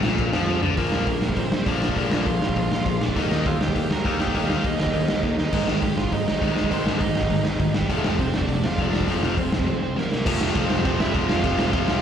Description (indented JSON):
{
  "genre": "punk rock",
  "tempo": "202 BPM",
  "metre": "4/4",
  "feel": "straight",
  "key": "unclear",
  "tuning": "A4 = 438 Hz",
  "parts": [
    { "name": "distorted electric guitar", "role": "riff", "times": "0.0-12.0 s", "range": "F2 to Eb4", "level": "-27 LUFS", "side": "left 9 dB", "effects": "overdrive, slapback echo" },
    { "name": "distorted electric guitar", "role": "riff", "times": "0.0-0.8, 5.5-12.0 s", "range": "F2 to Ab3", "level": "-29 LUFS", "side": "right 14 dB", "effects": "distortion, slapback echo" },
    { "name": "modern bright picked electric bass", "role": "bass", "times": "0.0-12.0 s", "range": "F1 to F2", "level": "-27 LUFS", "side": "equal", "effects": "none" },
    { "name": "raw garage drum kit", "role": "drums", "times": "0.0-11.9 s", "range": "crash cymbal, hi-hat, kick drum, snare drum, toms", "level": "-24 LUFS", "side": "equal", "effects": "none" },
    { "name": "smooth overdriven lead guitar", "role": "melody", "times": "0.8-12.0 s", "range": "G3 to Bb5", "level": "-28 LUFS", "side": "right 6 dB", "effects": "ping-pong delay" }
  ],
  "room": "light reverb",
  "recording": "live gig heard through the venue's PA, recital hall reverb",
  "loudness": "-20 LUFS",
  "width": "side -8 dB against mid",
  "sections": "0.8-10.3 A section; 10.3-12.0 B section",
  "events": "drum fill 0.5, 5.2, 10.0",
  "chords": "0.0 N.C.; 0.8 Bb; 3.2 Eb; 5.5 Ab5; 7.9 F"
}